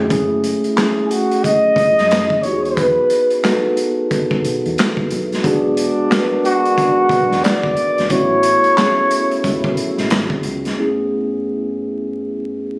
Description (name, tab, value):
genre	R&B, neo-soul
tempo	90 BPM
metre	4/4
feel	swing 63% on 16ths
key	unclear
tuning	A4 = 439 Hz
part	mellow tine electric piano	accompaniment	0.0-12.8 s	F#2 to B4	-18 LUFS	equal	medium stereo tremolo
part	deep dub fingered electric bass	bass	0.1-10.7 s	E1 to F#2	-26 LUFS	equal	none
part	crunchy breakbeat drum kit	drums	0.1-10.8 s	handclaps, hi-hat, kick drum, snare drum	-21 LUFS	equal	none
part	breathy flugelhorn	melody	1.1-10.1 s	F#4 to D#5	-14 LUFS	equal	none
part	clear trombone section	stabs	5.4-10.4 s	B2 to E4	-24 LUFS	equal	none
room	light reverb, small room reverb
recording	recorded on a phone in the room, studio reverb, vinyl crackle, compression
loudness	-14 LUFS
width	side -25 dB against mid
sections	0.1-10.8 A section; 10.8-12.8 B section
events	none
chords	0.1 F#m9; 2.4 Emaj7; 5.4 E9; 8.1 A6; 10.8 F#m11